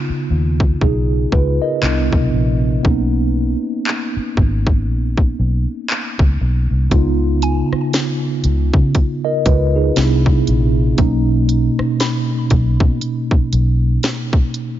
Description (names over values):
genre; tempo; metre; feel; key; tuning
contemporary R&B; 59 BPM; 4/4; swing 58% on 16ths; B lydian; A4 = 440 Hz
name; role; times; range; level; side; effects
mellow tine electric piano; accompaniment; 0.0-14.8 s; B2 to D#5; -18 LUFS; right 1 dB; medium stereo tremolo
vintage muted fingered electric bass; bass; 0.1-14.0 s; G#1 to C#3; -17 LUFS; equal; none
trap drum kit; drums; 0.6-14.8 s; handclaps, hi-hat, kick drum, rim click, snare drum; -17 LUFS; equal; none
mallet-like synth pluck; texture; 7.4-14.1 s; G#5 to B5; -30 LUFS; right 1 dB; chorus, phaser, tape echo
room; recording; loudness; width
little or no reverb; nothing above 7.5 kHz; -14 LUFS; side -12 dB against mid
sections
0.0-6.9 A section; 6.9-14.8 B section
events
none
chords
0.0 C#9; 1.8 Cmaj9; 2.8 Bmaj9; 6.9 C#9; 10.0 Cmaj9; 11.0 Bmaj9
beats
0.81 1.83 | 2.85 3.87 4.88 5.90 | 6.92 7.93 8.95 9.97 | 10.98 12.00 13.02 14.03